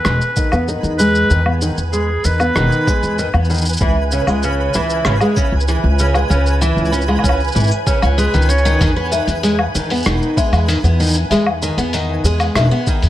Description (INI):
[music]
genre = folktronica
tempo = 96 BPM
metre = 4/4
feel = straight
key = E major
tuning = A4 = 440 Hz
[part]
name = bright clarinet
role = melody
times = 0.0-3.5, 8.2-8.8 s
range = G#4 to C#5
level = -21 LUFS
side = equal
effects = tape echo
[part]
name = lo-fi sampler-style drum kit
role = drums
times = 0.0-13.1 s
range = hi-hat, rim click, shaker, woodblock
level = -23 LUFS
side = left 1 dB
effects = small room ambience
[part]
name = twinkling granular texture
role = texture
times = 0.0-13.1 s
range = B4 to G#5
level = -25 LUFS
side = right 3 dB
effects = built-in reverb
[part]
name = picked twelve-string acoustic guitar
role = arpeggios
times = 0.1-13.0 s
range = C#3 to C#4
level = -19 LUFS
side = equal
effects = low-pass filter, tape echo
[part]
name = upright bass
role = bass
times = 0.1-13.1 s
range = E1 to E2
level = -17 LUFS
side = equal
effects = none
[part]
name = electronic kick drum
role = drums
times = 0.4-13.0 s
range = none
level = -17 LUFS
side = equal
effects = small room ambience
[part]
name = marimba with medium mallets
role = second line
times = 9.1-12.9 s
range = E5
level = -25 LUFS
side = left 6 dB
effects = ping-pong delay
[sound]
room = light reverb, small room ambience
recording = vinyl crackle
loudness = -13 LUFS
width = side -13 dB against mid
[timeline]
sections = 0.0-13.1 A section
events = filter sweep on twelve-string acoustic guitar 0.0-13.1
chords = 0.0 Emaj7; 3.8 C#m7; 8.8 Emaj7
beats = 0.06 0.68 | 1.31 1.93 2.56 3.18 | 3.81 4.43 5.06 5.68 | 6.31 6.93 7.56 8.18 | 8.81 9.43 10.06 10.68 | 11.31 11.93 12.56